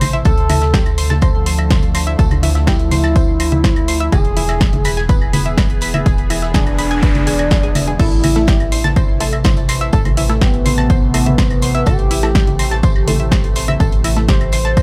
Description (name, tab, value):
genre	melodic techno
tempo	124 BPM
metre	4/4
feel	straight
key	A minor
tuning	A4 = 440 Hz
part	expressive synth lead	melody	0.0-14.8 s	B3 to C5	-24 LUFS	equal	lush chorus, sidechain pumping, digital delay
part	evolving wavetable pad	sustained chords	0.0-14.8 s	C3 to G#4	-27 LUFS	equal	chorus, built-in reverb, sidechain pumping
part	analog pluck	arpeggios	0.0-14.8 s	E4 to C6	-26 LUFS	equal	chorus, sidechain pumping, digital delay
part	tight sequencer bass	bass	0.0-14.8 s	E1 to D2	-22 LUFS	equal	sidechain pumping
part	house drum kit	drums	0.0-14.8 s	claves, congas, crash cymbal, hi-hat, snare drum	-23 LUFS	equal	sidechain pumping on hats, small room reverb, sidechain pumping on perc, sidechain pumping on cymbals
part	snare drum and tambourine	drums	0.0-14.8 s	none	-36 LUFS	equal	none
part	electronic kick drum	drums	0.3-14.8 s	none	-17 LUFS	equal	small room reverb
part	noise sweep	sound effects	6.4-8.0 s	none	-33 LUFS	equal	none
part	filtered dub chord stab	stabs	8.4-14.8 s	A3 to A4	-28 LUFS	equal	none
room	digital ambience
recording	none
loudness	-15 LUFS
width	mono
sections	0.0-14.8 A section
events	noise sweep 6.4-8.0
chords	0.3 Dm; 4.1 E; 8.0 Am